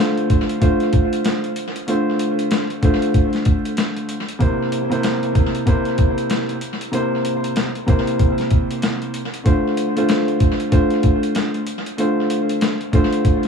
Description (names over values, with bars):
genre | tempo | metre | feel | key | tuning
hip hop, boom-bap hip-hop | 95 BPM | 4/4 | swing 60% on 16ths | D minor | A4 = 436 Hz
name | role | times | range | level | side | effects
dark grand piano | accompaniment | 0.0-13.5 s | C3 to C5 | -19 LUFS | equal | high-pass filter, low-pass filter, tape echo
boom bap sampler-style drum kit | drums | 0.2-13.5 s | hi-hat, kick drum, snare drum | -20 LUFS | equal | tape echo
room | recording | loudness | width
light reverb, digital ambience | echo-heavy mix, vinyl crackle | -16 LUFS | side -6 dB against mid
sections
0.0-13.5 A section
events
none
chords
0.0 Dm7; 4.4 C7; 9.5 Dm7